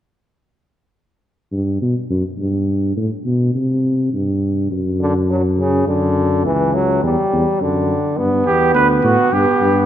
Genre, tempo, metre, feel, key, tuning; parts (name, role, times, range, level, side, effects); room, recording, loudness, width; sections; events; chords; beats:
classical, imitative canzona for brass ensemble; 104 BPM; 3/4; straight; G major; A4 = 439 Hz
mellow tuba; bass; 1.5-9.9 s; C#2 to C3; -17 LUFS; equal
clear trombone; accompaniment; 5.0-9.9 s; C#3 to B3; -17 LUFS; equal
dark trumpet; second line; 8.5-9.9 s; F#4 to B4; -15 LUFS; right 4 dB
moderate church reverb, RT60 3.6 s; dark, warm production; -15 LUFS; side -10 dB against mid
1.2-9.9 A section
1.2 G; 2.4 N.C.; 3.0 Amadd9 (rootless); 4.1 N.C.; 4.7 D/F#; 6.5 C#dim; 7.6 D/F#; 8.2 G
| 1.23 1.82 2.40 | 2.98 3.56 4.14 | 4.71 5.29 5.87 | 6.46 7.04 7.61 | 8.18 8.75 9.33